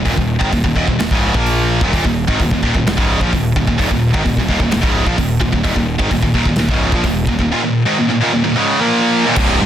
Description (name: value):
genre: heavy metal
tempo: 129 BPM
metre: 4/4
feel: straight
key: unclear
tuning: A4 = 440 Hz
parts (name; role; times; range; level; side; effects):
- heavy high-gain guitar; riff; 0.0-9.7 s; C2 to Bb3; -14 LUFS; equal; distortion
- fuzz picked electric bass; bass; 0.0-9.7 s; C1 to Bb1; -20 LUFS; equal; overdrive
- modern studio drum kit; drums; 0.1-9.5 s; china cymbal, crash cymbal, hi-hat, kick drum, snare drum; -19 LUFS; equal; none
room: light reverb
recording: dense, heavily limited modern master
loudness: -13 LUFS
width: side -10 dB against mid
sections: 0.0-9.4 A section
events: none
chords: 0.0 Eb5; 1.3 Bb5; 1.8 Eb5; 8.8 Bb5; 9.3 Eb5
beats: | 0.06 0.52 0.99 1.46 | 1.92 2.39 2.86 3.32 | 3.79 4.25 4.72 5.18 | 5.65 6.12 6.58 7.05 | 7.51 7.97 8.44 8.90 | 9.37